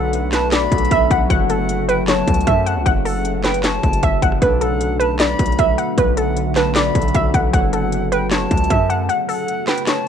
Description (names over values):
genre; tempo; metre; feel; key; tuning
hip hop, trap; 154 BPM; 4/4; half-time; B minor; A4 = 438 Hz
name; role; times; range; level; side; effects
warbly dusty pluck; melody; 0.0-10.1 s; A4 to F#5; -20 LUFS; right 1 dB; chorus, ping-pong delay
silver concert flute; second line; 0.0-10.1 s; F#5 to B5; -25 LUFS; left 2 dB; ping-pong delay
concert harp; accompaniment; 0.0-10.1 s; B2 to C#5; -28 LUFS; left 3 dB; none
deep dark ambient pad; sustained chords; 0.0-10.1 s; C#3 to F#4; -24 LUFS; equal; chorus, built-in reverb
distorted 808-style bass; bass; 0.0-9.1 s; F#1 to F#2; -21 LUFS; equal; distortion
trap drum kit; drums; 0.1-10.0 s; handclaps, hi-hat, kick drum, rim click, snare drum; -20 LUFS; equal; vintage 12-bit sampler grit
room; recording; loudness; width
light reverb; rough home demo mix; -15 LUFS; side -8 dB against mid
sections
0.0-10.1 A section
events
break 9.1-10.1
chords
0.0 Bm7; 1.3 F#m; 4.4 Bm7; 7.5 F#m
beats
0.13 0.52 0.91 | 1.30 1.69 2.08 2.47 | 2.86 3.25 3.64 4.03 | 4.42 4.81 5.20 5.59 | 5.98 6.37 6.76 7.14 | 7.54 7.92 8.31 8.70 | 9.09 9.48 9.87